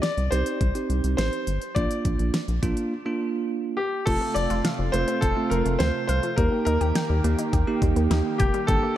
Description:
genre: synth-pop.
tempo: 104 BPM.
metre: 4/4.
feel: straight.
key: unclear.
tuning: A4 = 439 Hz.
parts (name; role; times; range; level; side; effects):
bright concert grand piano; melody; 0.0-9.0 s; G4 to D5; -27 LUFS; left 1 dB; analog delay.
bell-like tine electric piano; accompaniment; 0.0-9.0 s; A3 to G4; -28 LUFS; moving between right 1 dB and right 8 dB; auto-pan.
pop drum kit; drums; 0.0-8.8 s; crash cymbal, hi-hat, kick drum, snare drum; -27 LUFS; equal; none.
rubbery square bass; bass; 0.2-8.8 s; F1 to Eb2; -24 LUFS; equal; none.
lush unison pad; sustained chords; 4.1-9.0 s; C3 to G4; -32 LUFS; equal; chorus.
analog pluck; arpeggios; 4.1-8.9 s; F3 to G5; -34 LUFS; left 4 dB; chorus, analog delay.
room: light reverb.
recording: dark, warm production.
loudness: -22 LUFS.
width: side -12 dB against mid.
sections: 0.0-4.1 A section; 4.1-9.0 B section.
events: break 2.9-4.1.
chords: 0.0 Cm; 1.8 Bb; 4.1 F; 6.4 Eb.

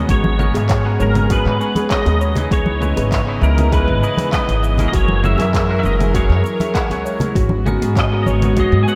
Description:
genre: sunset chillout.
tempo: 99 BPM.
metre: 4/4.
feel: straight.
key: G# minor.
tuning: A4 = 441 Hz.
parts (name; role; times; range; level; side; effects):
pedal steel guitar; melody; 0.0-9.0 s; A#4 to G#5; -26 LUFS; equal; ensemble chorus, analog delay.
twangy electric guitar; accompaniment; 0.0-9.0 s; G#3 to D#5; -28 LUFS; equal; analog delay.
rich chamber string section; sustained chords; 0.0-9.0 s; C#3 to D#5; -25 LUFS; equal; none.
upright bass; bass; 0.0-8.8 s; F#1 to G#2; -19 LUFS; equal; none.
soft round pluck; arpeggios; 0.1-8.7 s; F#4 to F#5; -29 LUFS; equal; chorus, analog delay.
deep house drum kit; drums; 0.1-9.0 s; cabasa, congas, handclaps, hi-hat; -29 LUFS; equal; none.
electronic kick drum; drums; 0.1-8.7 s; none; -22 LUFS; equal; none.
congas and bongos; percussion; 0.2-8.4 s; none; -27 LUFS; equal; none.
room: moderate lush hall reverb, RT60 2.1 s.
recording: dreamy mix soaked in reverb.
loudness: -16 LUFS.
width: mono.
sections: 0.0-9.0 A section.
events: none.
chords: 0.0 G#m11; 4.9 F#9; 7.4 G#m11.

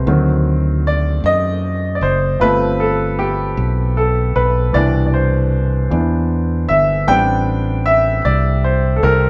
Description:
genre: slow gospel.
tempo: 51 BPM (dotted quarters).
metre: 6/8.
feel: straight.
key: C major.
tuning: A4 = 440 Hz.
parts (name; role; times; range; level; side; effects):
clear baby grand piano; accompaniment; 0.0-9.3 s; B2 to G5; -19 LUFS; equal; none.
fingered electric bass; bass; 0.0-9.3 s; F#1 to F#2; -19 LUFS; equal; none.
room: moderate studio reverb, RT60 0.8 s.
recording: band playing live in one room.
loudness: -16 LUFS.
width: mono.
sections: 0.0-9.3 A section.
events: grand piano solo 0.0-9.3.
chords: 0.1 D7b9; 2.4 G7sus4; 4.8 Cmaj9; 7.1 Am11.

